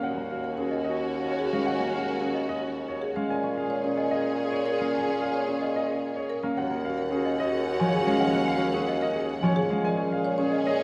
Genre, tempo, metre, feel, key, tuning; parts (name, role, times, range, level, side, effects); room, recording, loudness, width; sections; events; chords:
classical, minimalist pattern music; 110 BPM; 3/4; straight; Eb minor; A4 = 442 Hz
warm grand piano; melody; 0.0-10.8 s; Ab4 to Ab5; -35 LUFS; equal
warm clarinet; second line; 0.0-10.8 s; Gb4 to Ab4; -37 LUFS; equal
concert harp; accompaniment; 0.0-10.8 s; F3 to Db4; -34 LUFS; equal
rich studio string section; sustained chords; 0.0-10.8 s; Db4 to Gb5; -37 LUFS; equal
marimba with soft mallets; arpeggios; 0.0-10.8 s; Db4 to Db5; -33 LUFS; equal
warm bassoon; bass; 0.0-10.8 s; Eb2 to Bb2; -34 LUFS; equal
worn celesta; arpeggios; 0.7-10.7 s; Eb5 to Ab5; -39 LUFS; equal
wet church reverb, RT60 3.0 s; -27 LUFS; mono
0.0-10.8 A section
0.0 Ebm11; 3.3 Bbm7; 6.6 Ebm11; 9.8 Bbm7